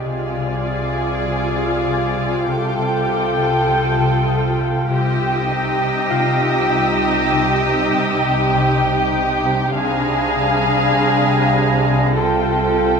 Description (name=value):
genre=cinematic, suspense film score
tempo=99 BPM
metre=4/4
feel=straight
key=unclear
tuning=A4 = 439 Hz
part: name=glass harmonica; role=sustained chords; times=0.0-13.0 s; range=Eb4 to G5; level=-27 LUFS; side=right 1 dB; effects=none
part: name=concert harp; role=riff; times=0.0-13.0 s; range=C3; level=-23 LUFS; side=left 3 dB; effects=none
part: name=muted studio cello section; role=bass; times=0.0-13.0 s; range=C3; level=-26 LUFS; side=right 3 dB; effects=none
part: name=Celtic harp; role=texture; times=0.0-13.0 s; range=F4 to Eb6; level=-28 LUFS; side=left 3 dB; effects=none
part: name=muted studio violin section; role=melody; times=0.1-13.0 s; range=D5 to G5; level=-23 LUFS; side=left 1 dB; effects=none
part: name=muted studio violin section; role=second line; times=0.1-13.0 s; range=G4 to A4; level=-21 LUFS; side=equal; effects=none
part: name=muted chamber viola section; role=accompaniment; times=0.1-13.0 s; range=D4 to F4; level=-24 LUFS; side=equal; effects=none
part: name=muted studio double bass section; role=bass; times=0.1-13.0 s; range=C2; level=-27 LUFS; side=right 6 dB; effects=none
part: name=muted studio violin section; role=texture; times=0.1-13.0 s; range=F5 to Bb6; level=-27 LUFS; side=equal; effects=none
room=wet scoring stage reverb, RT60 1.6 s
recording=none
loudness=-15 LUFS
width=side -6 dB against mid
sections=0.0-13.0 A section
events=none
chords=0.1 Ddim/C; 2.5 Fadd9/C; 4.9 Cm; 9.7 Ddim/C; 12.2 Fadd9/C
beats=| 0.05 0.66 1.26 1.87 | 2.47 3.08 3.69 4.29 | 4.90 5.50 6.11 6.72 | 7.32 7.93 8.54 9.14 | 9.75 10.35 10.96 11.56 | 12.17 12.78